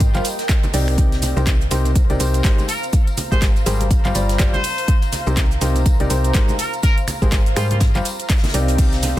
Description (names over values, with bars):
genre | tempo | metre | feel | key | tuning
piano house | 123 BPM | 4/4 | swing 58% on 16ths | C minor | A4 = 438 Hz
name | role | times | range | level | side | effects
solid FM bass | bass | 0.0-9.2 s | G1 to Ab2 | -20 LUFS | equal | tube saturation, sidechain pumping
electronic kick drum | drums | 0.0-8.9 s | none | -16 LUFS | equal | none
house drum kit | drums | 0.0-9.2 s | crash cymbal, finger snaps, handclaps, hi-hat, shaker | -26 LUFS | right 1 dB | none
soft brush drum kit | drums | 0.0-9.2 s | hi-hat, snare drum | -33 LUFS | left 3 dB | none
tambourine and congas | percussion | 0.0-9.1 s | none | -32 LUFS | equal | none
granular cloud pad | texture | 0.0-9.2 s | Bb4 to Bb5 | -29 LUFS | right 1 dB | built-in reverb, sidechain pumping
clear concert grand piano | riff | 0.1-9.2 s | C3 to F5 | -24 LUFS | left 1 dB | sidechain pumping, ping-pong delay
trumpet with straight mute | melody | 2.7-7.8 s | F4 to C5 | -28 LUFS | left 1 dB | ping-pong delay
room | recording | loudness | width
small room ambience | dense, heavily limited modern master | -15 LUFS | side -14 dB against mid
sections
0.0-9.2 A section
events
none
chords
0.0 G7sus4; 1.0 Cm7; 2.7 Abmaj9; 3.9 G7sus4; 4.9 Cm7; 6.6 Abmaj9; 7.8 G7sus4